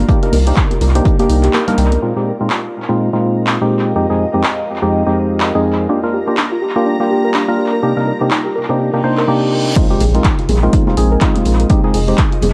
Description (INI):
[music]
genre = deep house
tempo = 124 BPM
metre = 4/4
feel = swing 58% on 16ths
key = unclear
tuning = A4 = 440 Hz
[part]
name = soft round pluck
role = arpeggios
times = 0.0-2.0, 5.9-12.5 s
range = D4 to G5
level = -24 LUFS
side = equal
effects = chorus, sidechain pumping, analog delay
[part]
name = percussive organ stab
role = stabs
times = 0.0-12.2 s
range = F2 to C5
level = -18 LUFS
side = equal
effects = chorus, sidechain pumping, analog delay
[part]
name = rubbery square bass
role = bass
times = 0.0-2.0, 10.0-12.5 s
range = F1 to C2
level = -16 LUFS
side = equal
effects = sidechain pumping
[part]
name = ethereal airy pad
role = texture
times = 0.0-12.5 s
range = G3 to Eb5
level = -30 LUFS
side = equal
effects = ensemble chorus, built-in reverb, phaser, sidechain pumping
[part]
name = damped 70s drum kit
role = drums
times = 0.1-1.9, 9.8-12.5 s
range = hi-hat, snare drum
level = -38 LUFS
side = equal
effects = none
[part]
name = electronic kick drum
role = drums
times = 0.1-1.2, 9.8-12.3 s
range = none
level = -16 LUFS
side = equal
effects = vintage 12-bit sampler grit
[part]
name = punchy analog drum machine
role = drums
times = 0.2-12.5 s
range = crash cymbal, handclaps, hi-hat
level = -24 LUFS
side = equal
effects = vintage 12-bit sampler grit, analog delay
[part]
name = congas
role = percussion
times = 0.3-2.0, 10.5-12.5 s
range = none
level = -26 LUFS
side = equal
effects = sidechain pumping on perc, analog delay
[part]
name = analog string pad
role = texture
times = 5.9-9.3 s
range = Bb5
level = -32 LUFS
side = equal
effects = ensemble chorus, sidechain pumping
[part]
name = reverse cymbal and impact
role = sound effects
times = 9.0-11.7 s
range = none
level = -29 LUFS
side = equal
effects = none
[sound]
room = light reverb, digital ambience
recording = echo-heavy mix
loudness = -14 LUFS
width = mono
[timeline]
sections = 0.0-2.0 A section; 2.0-9.8 B section; 9.8-12.5 C section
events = kick drops out 1.5-2.0; band accent 1.5; filter sweep on synth stab 2.0-9.8; reverse cymbal 9.1-9.8; drop 9.8-12.5; impact 9.8-11.7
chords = 0.1 Cm7; 2.0 Bb9sus4; 4.0 Fm7; 5.9 Gm7; 7.8 Cm7; 9.8 Bb9sus4; 11.7 Fm7